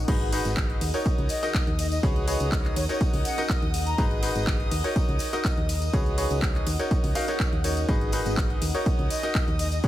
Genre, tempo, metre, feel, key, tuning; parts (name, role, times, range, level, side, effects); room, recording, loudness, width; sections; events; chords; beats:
piano house; 123 BPM; 4/4; straight; Eb minor; A4 = 440 Hz
warm studio violin section; sustained chords; 0.0-9.9 s; Eb5 to Eb6; -37 LUFS; left 2 dB; sidechain pumping
solid FM bass; bass; 0.0-9.9 s; Ab1 to Eb2; -28 LUFS; equal; sidechain pumping
granular cloud pad; texture; 0.0-9.9 s; Db4 to Gb5; -36 LUFS; left 1 dB; built-in reverb, sidechain pumping
bright concert grand piano; riff; 0.1-9.9 s; Eb4 to F5; -30 LUFS; equal; sidechain pumping, dub echo
electronic kick drum; drums; 0.1-9.9 s; -26 LUFS; equal; small room reverb
house drum kit; drums; 0.1-9.9 s; crash cymbal, handclaps, hi-hat, ride cymbal; -34 LUFS; equal; small room reverb
tambourine; percussion; 0.1-9.9 s; -39 LUFS; left 4 dB
mellow silver concert flute; melody; 1.3-4.0, 9.1-9.9 s; Db5 to Bb5; -34 LUFS; left 1 dB; dub echo
studio reverb; -23 LUFS; side -13 dB against mid
0.0-9.9 A section
0.1 Abm7; 0.8 Ebm7; 2.0 Db7sus4; 2.8 Ebm7; 4.0 Abm7; 4.7 Ebm7; 5.9 Db7sus4; 6.7 Ebm7; 7.9 Abm7; 8.6 Ebm7
| 0.08 0.57 1.06 1.54 | 2.03 2.52 3.01 3.50 | 3.98 4.47 4.96 5.45 | 5.93 6.42 6.91 7.40 | 7.89 8.37 8.86 9.35 | 9.84